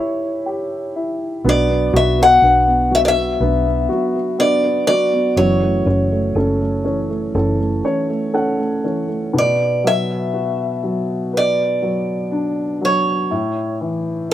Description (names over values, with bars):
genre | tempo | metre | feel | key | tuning
acoustic folk-pop ballad | 61 BPM | 4/4 | straight | B minor | A4 = 442 Hz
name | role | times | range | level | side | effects
picked acoustic archtop guitar | melody | 0.0-14.3 s | C#5 to F#5 | -17 LUFS | left 1 dB | none
warm upright piano | accompaniment | 0.0-14.3 s | A2 to F#5 | -21 LUFS | left 1 dB | none
felt-muted upright piano | arpeggios | 1.4-9.4 s | E3 to D4 | -22 LUFS | right 4 dB | none
vintage muted fingered electric bass | bass | 1.4-7.8 s | F#1 to B1 | -20 LUFS | equal | none
room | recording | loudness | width
little or no reverb | recorded outdoors, with no room sound | -15 LUFS | side -12 dB against mid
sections
0.0-9.3 A section; 9.3-14.3 A section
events
none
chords
0.0 A7; 1.4 Bm; 5.4 F#m7; 9.3 Bm; 13.3 A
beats
0.47 | 1.44 2.43 3.41 4.39 | 5.37 6.36 7.35 8.35 | 9.35 10.34 11.33 12.32 | 13.31 14.29